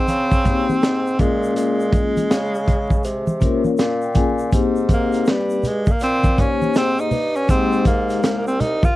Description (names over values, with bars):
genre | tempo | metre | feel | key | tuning
hip hop, jazz-hop | 81 BPM | 4/4 | swing 63% on 16ths | Ab major | A4 = 441 Hz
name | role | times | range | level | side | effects
breathy tenor saxophone | melody | 0.0-9.0 s | G3 to F4 | -21 LUFS | right 1 dB | none
warm bassoon | bass | 0.0-8.9 s | C2 to Db3 | -24 LUFS | right 1 dB | none
crunchy breakbeat drum kit | drums | 0.1-9.0 s | hi-hat, kick drum, snare drum | -19 LUFS | equal | none
congas and egg shaker | percussion | 0.1-9.0 s | none | -27 LUFS | right 1 dB | none
vibraphone with soft mallets | accompaniment | 0.4-8.5 s | Ab3 to Ab5 | -22 LUFS | left 5 dB | none
room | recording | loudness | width
little or no reverb | dry, close 1970s-style studio recording, vinyl crackle | -16 LUFS | side -16 dB against mid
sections
0.0-4.5 A section; 4.5-9.0 B section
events
vibraphone fill 3.0-4.5; tenor saxophone solo 4.5-9.0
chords
0.0 Bbm11; 1.2 Bbm9; 4.5 Abmaj9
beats
0.08 0.82 | 1.56 2.31 3.05 3.79 | 4.53 5.27 6.01 6.75 | 7.49 8.23